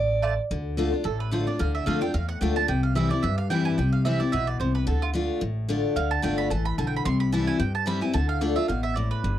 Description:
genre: bluegrass.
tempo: 220 BPM.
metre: 4/4.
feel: swing 55% on 8ths.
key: D dorian.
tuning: A4 = 439 Hz.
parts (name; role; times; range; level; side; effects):
picked steel-string acoustic guitar; accompaniment; 0.0-9.4 s; G2 to D5; -26 LUFS; left 2 dB; none.
upright bass; bass; 0.0-9.4 s; G1 to G2; -27 LUFS; equal; none.
mandolin; stabs; 0.2-9.4 s; A3 to C6; -30 LUFS; right 8 dB; none.
room: little or no reverb.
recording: dry, close 1970s-style studio recording.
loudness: -23 LUFS.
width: side -11 dB against mid.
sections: 0.5-9.2 A section.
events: mandolin solo 0.5-9.4.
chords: 0.0 Dm; 2.7 C; 4.9 Dm; 7.1 C; 8.1 Dm.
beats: 0.24 | 0.51 0.78 1.05 1.33 | 1.60 1.87 2.14 2.42 | 2.69 2.96 3.23 3.51 | 3.78 4.05 4.33 4.60 | 4.87 5.14 5.42 5.69 | 5.96 6.24 6.51 6.78 | 7.05 7.33 7.60 7.87 | 8.14 8.42 8.69 8.96 | 9.24.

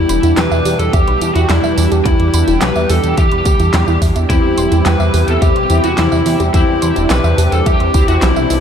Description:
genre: synthwave.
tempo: 107 BPM.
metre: 4/4.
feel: straight.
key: E minor.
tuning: A4 = 439 Hz.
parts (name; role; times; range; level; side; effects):
lead guitar through a small cranked amp; melody; 0.0-8.6 s; E4 to B4; -17 LUFS; left 1 dB; overdrive, ping-pong delay.
phased analog pad; sustained chords; 0.0-8.6 s; B2 to G4; -20 LUFS; right 2 dB; phaser, chorus, sidechain pumping.
chorused synth bass; bass; 0.0-8.6 s; E1 to E2; -15 LUFS; equal; none.
soft round pluck; arpeggios; 0.1-8.6 s; E4 to C6; -23 LUFS; right 3 dB; chorus, tape echo.
pop drum kit; drums; 0.1-8.6 s; handclaps, hi-hat, snare drum, tambourine; -22 LUFS; equal; none.
electronic kick drum; drums; 0.9-8.1 s; none; -15 LUFS; equal; none.
analog synth brass; stabs; 4.3-8.6 s; C4 to G4; -20 LUFS; left 4 dB; chorus.
room: light reverb.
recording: dark, warm production.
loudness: -11 LUFS.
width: side -8 dB against mid.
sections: 0.0-8.6 A section.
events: none.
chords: 0.0 Em; 4.3 C/E.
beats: 0.37 0.93 1.49 | 2.06 2.62 3.18 3.74 | 4.30 4.86 5.42 5.98 | 6.54 7.10 7.66 8.22.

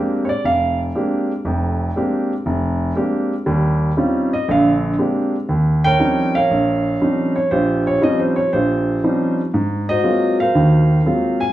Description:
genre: solo jazz.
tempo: 119 BPM.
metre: 4/4.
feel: swing 68% on 8ths.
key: Eb mixolydian.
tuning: A4 = 435 Hz.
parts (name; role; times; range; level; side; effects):
warm grand piano; solo; 0.0-11.5 s; F1 to Ab5; -15 LUFS; right 1 dB; none.
room: moderate large studio reverb, RT60 1.1 s.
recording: small room ambience.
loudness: -15 LUFS.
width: side -14 dB against mid.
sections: 0.0-5.5 A section; 5.5-11.5 B section.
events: grand piano solo 0.0-5.5.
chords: 0.0 Bb13; 3.5 Eb13; 4.5 Bb13; 5.5 Eb13; 9.5 Ab13.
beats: 0.43 0.94 | 1.45 1.95 2.46 2.96 | 3.47 3.97 4.48 4.98 | 5.49 6.00 6.50 7.01 | 7.51 8.02 8.53 9.03 | 9.54 10.04 10.55 11.05.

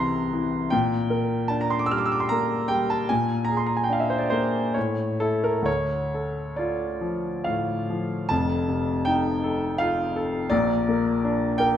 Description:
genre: classical, romantic nocturne for solo piano.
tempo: 65-84 BPM.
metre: 3/4.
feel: rubato.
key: D minor.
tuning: A4 = 439 Hz.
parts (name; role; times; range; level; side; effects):
clear grand piano; solo; 0.0-11.8 s; F1 to F6; -22 LUFS; equal; none.
room: wet recital hall reverb, RT60 1.5 s.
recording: none.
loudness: -22 LUFS.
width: side -10 dB against mid.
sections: 0.0-8.3 A section; 8.3-11.8 B section.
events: none.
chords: 0.0 Am/C; 0.7 Gm/Bb; 3.1 Bb7; 4.8 A; 5.7 Dm; 8.3 F7; 10.5 Bb.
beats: | 0.73 1.51 2.30 | 3.10 3.89 4.75 | 5.66 6.57 7.44 | 8.31 9.06 9.79 | 10.51 11.24.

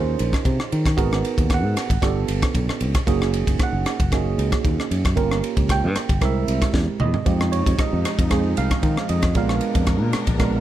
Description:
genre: electric jazz fusion.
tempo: 115 BPM.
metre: 4/4.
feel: swing 53% on 16ths.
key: unclear.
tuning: A4 = 440 Hz.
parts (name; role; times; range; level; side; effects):
tine electric piano; accompaniment; 0.0-10.6 s; Ab3 to G5; -24 LUFS; right 7 dB; analog chorus.
fingered electric bass; bass; 0.0-10.6 s; Gb1 to Eb3; -22 LUFS; equal; none.
crisp fusion drum kit; drums; 0.2-10.5 s; kick drum, ride cymbal, rim click, snare drum, toms; -22 LUFS; equal; none.
rich studio string section; sustained chords; 7.3-10.6 s; Cb3 to Bb4; -31 LUFS; left 6 dB; none.
room: light reverb, small room ambience.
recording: none.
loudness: -18 LUFS.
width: side -12 dB against mid.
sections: 0.0-10.6 A section.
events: drum fill 6.7-7.3.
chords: 0.0 Eb9sus4; 1.0 Abm7; 2.0 G9; 3.1 Gb69; 5.2 Gm7b5; 6.2 C7b13; 7.3 Fm9; 9.4 Bb7b9.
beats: 0.46 | 0.98 1.51 2.03 2.56 | 3.08 3.60 4.13 4.65 | 5.18 5.70 6.22 6.75 | 7.27 7.79 8.31 8.84 | 9.36 9.88 10.41.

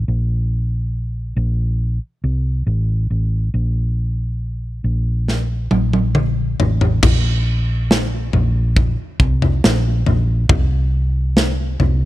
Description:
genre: pop ballad.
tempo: 69 BPM.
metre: 4/4.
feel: straight.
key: unclear.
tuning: A4 = 435 Hz.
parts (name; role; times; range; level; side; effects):
hollow-body short-scale fingered electric bass; bass; 0.0-12.1 s; A1 to C2; -17 LUFS; equal; none.
modern studio drum kit; drums; 5.3-12.0 s; crash cymbal, kick drum, snare drum, toms; -17 LUFS; equal; none.
room: little or no reverb.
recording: dark, warm production.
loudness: -16 LUFS.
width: side -16 dB against mid.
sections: 0.0-7.0 A section; 7.0-12.1 B section.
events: drum fill 5.3-7.0.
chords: none.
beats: | 0.08 0.94 1.80 2.67 | 3.54 4.40 5.27 6.15 | 7.03 7.90 8.77 9.63 | 10.50 11.36.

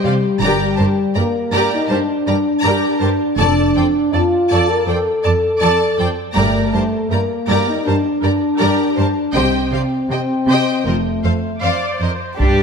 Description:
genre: cinematic, epic orchestral film score.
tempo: 81 BPM.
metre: 4/4.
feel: straight.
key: G minor.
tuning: A4 = 440 Hz.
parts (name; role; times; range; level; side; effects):
warm symphonic violin section; second line; 0.0-12.6 s; D4 to Bb5; -22 LUFS; left 2 dB; none.
warm symphonic viola section; accompaniment; 0.0-12.6 s; G3 to D5; -24 LUFS; right 2 dB; none.
mellow French horn section; sustained chords; 0.0-12.6 s; Bb2 to D5; -17 LUFS; left 2 dB; none.
warm symphonic cello section; bass; 0.0-12.6 s; F2 to D4; -21 LUFS; right 3 dB; none.
rich symphonic double bass section; bass; 0.4-12.6 s; F1 to G2; -22 LUFS; right 3 dB; none.
warm studio violin section; melody; 12.4-12.6 s; G4; -17 LUFS; left 3 dB; none.
warm trombone section; sustained chords; 12.4-12.6 s; G2 to G3; -19 LUFS; right 3 dB; none.
taiko ensemble; drums; 12.4-12.6 s; none; -15 LUFS; right 1 dB; none.
room: moderate scoring stage reverb, RT60 1.6 s.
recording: none.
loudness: -14 LUFS.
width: side -6 dB against mid.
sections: 0.0-12.4 A section.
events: none.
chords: 0.4 Gm; 3.4 Dm/F; 6.4 Gm; 9.3 Cm; 10.9 F.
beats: | 0.42 1.16 1.90 2.64 | 3.38 4.12 4.87 5.61 | 6.36 7.10 7.85 8.60 | 9.35 10.10 10.86 11.63 | 12.39.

